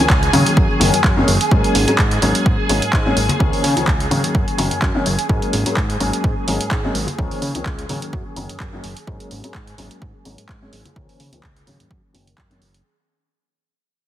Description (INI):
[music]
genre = filtered disco house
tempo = 127 BPM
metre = 4/4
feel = swing 54% on 16ths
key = unclear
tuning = A4 = 444 Hz
[part]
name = dark grand piano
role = accompaniment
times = 0.0-12.6 s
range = Eb3 to Db4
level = -21 LUFS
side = left 2 dB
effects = phaser, sidechain pumping, low-pass filter
[part]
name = phased string machine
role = sustained chords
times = 0.0-12.9 s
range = Ab4 to Ab5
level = -24 LUFS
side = right 1 dB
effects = ensemble chorus, phaser, sidechain pumping, low-pass filter
[part]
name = fat analog bass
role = bass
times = 0.0-12.8 s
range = Gb1 to Db3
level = -22 LUFS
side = equal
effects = sidechain pumping, low-pass filter
[part]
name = electronic kick drum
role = drums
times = 0.1-12.5 s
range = none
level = -19 LUFS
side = equal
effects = none
[part]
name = punchy analog drum machine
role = drums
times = 0.1-12.8 s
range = handclaps, hi-hat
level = -23 LUFS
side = right 1 dB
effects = sidechain pumping on hats, sidechain pumping on perc
[part]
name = egg shaker and congas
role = percussion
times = 0.1-12.8 s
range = none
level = -27 LUFS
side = left 1 dB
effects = none
[sound]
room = light reverb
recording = heavily compressed radio sound, multiband compression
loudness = -15 LUFS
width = side -12 dB against mid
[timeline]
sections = 0.0-12.9 A section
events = fade-out 0.0-12.9; filter sweep on analog synth bass 0.0-12.9; filter sweep 0.0-12.9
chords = 0.0 Db69; 0.6 Gb6; 1.5 Ab9sus4; 3.4 Db69; 4.3 Gb6; 5.3 Ab9sus4; 7.2 Db69; 8.1 Gb6; 9.1 Ab9sus4; 11.0 Db69; 11.9 Gb6